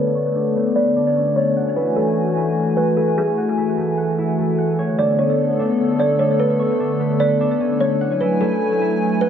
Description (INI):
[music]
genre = hip hop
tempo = 149 BPM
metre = 4/4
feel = half-time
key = F# minor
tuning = A4 = 438 Hz
[part]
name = kalimba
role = melody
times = 0.0-9.3 s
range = G#4 to D5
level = -20 LUFS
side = equal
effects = low-pass filter, dub echo
[part]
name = hollow soft pad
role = sustained chords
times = 0.0-9.3 s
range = D3 to G#5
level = -19 LUFS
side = left 1 dB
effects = chorus, low-pass filter
[part]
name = concert harp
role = arpeggios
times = 0.0-9.3 s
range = A3 to C#6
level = -26 LUFS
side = right 1 dB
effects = low-pass filter, dub echo
[sound]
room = light reverb, digital ambience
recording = echo-heavy mix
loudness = -16 LUFS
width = side -8 dB against mid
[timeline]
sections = 0.0-9.3 A section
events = filter sweep 0.0-9.3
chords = 0.0 Bm9; 1.6 F#m9; 4.8 Bm9; 8.0 F#m9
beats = 0.35 0.76 1.16 | 1.56 1.97 2.37 2.77 | 3.17 3.58 3.98 4.38 | 4.78 5.19 5.59 5.99 | 6.39 6.80 7.20 7.60 | 8.01 8.41 8.81 9.21